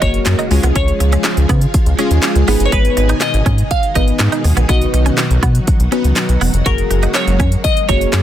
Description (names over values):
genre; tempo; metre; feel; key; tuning
dance-pop; 122 BPM; 4/4; straight; G# dorian; A4 = 440 Hz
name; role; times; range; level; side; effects
glassy wavetable pluck; melody; 0.0-8.2 s; A#4 to E#5; -20 LUFS; equal; chorus, digital delay
glassy digital keys; accompaniment; 0.0-8.2 s; G#3 to B4; -20 LUFS; left 2 dB; chorus, sidechain pumping
string machine, violins; sustained chords; 0.0-8.2 s; B2 to G#4; -22 LUFS; equal; ensemble chorus, sidechain pumping
twelve-string electric guitar; riff; 0.0-8.0 s; G#3 to F#4; -22 LUFS; right 5 dB; analog chorus
round analog bass; bass; 0.0-8.2 s; E1 to C#3; -14 LUFS; equal; sidechain pumping
house drum kit; drums; 0.0-8.2 s; handclaps, hi-hat, kick drum, snare drum; -17 LUFS; equal; none
impact; sound effects; 0.4-0.8 s; none; barely audible; none; none
room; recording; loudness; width
light reverb; dense, heavily limited modern master; -12 LUFS; side -11 dB against mid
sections
0.0-8.2 A section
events
impact 0.0-0.8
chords
0.0 F#add9; 0.5 C#; 2.5 G#m; 4.7 B; 6.7 F#add9